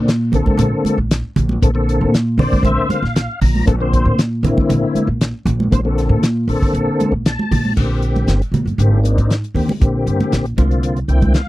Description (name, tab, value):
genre	electric jazz fusion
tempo	117 BPM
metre	4/4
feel	straight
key	Bb lydian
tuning	A4 = 439 Hz
part	tonewheel organ	accompaniment	0.0-11.5 s	D3 to Bb5	-19 LUFS	left 2 dB	slow rotary speaker, chorus vibrato
part	upright bass	bass	0.0-11.3 s	G1 to Bb2	-17 LUFS	equal	none
part	damped 70s drum kit	drums	0.1-11.5 s	crash cymbal, hi-hat, kick drum, snare drum	-17 LUFS	equal	none
part	congas	percussion	0.3-11.3 s	none	-20 LUFS	right 3 dB	none
room	little or no reverb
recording	dry, close 1970s-style studio recording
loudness	-14 LUFS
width	side -16 dB against mid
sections	0.0-7.8 A section; 7.8-11.5 B section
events	tonewheel organ fill 2.1-3.7, 7.0-7.8, 10.8-11.5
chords	0.0 Bbmaj9; 7.8 Bb69; 8.8 Abmaj9#11; 9.8 Bb69; 10.6 C9sus4